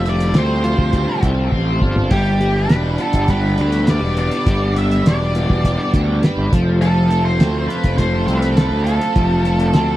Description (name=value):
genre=psychedelic rock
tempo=102 BPM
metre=4/4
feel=straight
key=unclear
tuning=A4 = 440 Hz
part: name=octave-fuzz lead guitar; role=melody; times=0.0-10.0 s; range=G4 to E5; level=-24 LUFS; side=right 1 dB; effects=distortion, tape echo
part: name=combo organ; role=sustained chords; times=0.0-10.0 s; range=G3 to A4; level=-28 LUFS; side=right 6 dB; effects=none
part: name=biting overdriven guitar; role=riff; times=0.0-10.0 s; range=F3 to C5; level=-20 LUFS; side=left 1 dB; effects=rotary speaker
part: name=fuzz picked electric bass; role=bass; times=0.0-10.0 s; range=E1 to D2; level=-18 LUFS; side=equal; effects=overdrive
part: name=cloth-damped thuddy drum kit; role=drums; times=0.1-9.9 s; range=crash cymbal, hi-hat, kick drum, snare drum, toms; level=-16 LUFS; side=equal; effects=none
room=little or no reverb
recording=dry, close 1970s-style studio recording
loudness=-14 LUFS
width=side -15 dB against mid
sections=0.0-10.0 A section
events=drum fill 1.5-2.1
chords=0.0 Fsus2; 2.1 G; 6.5 F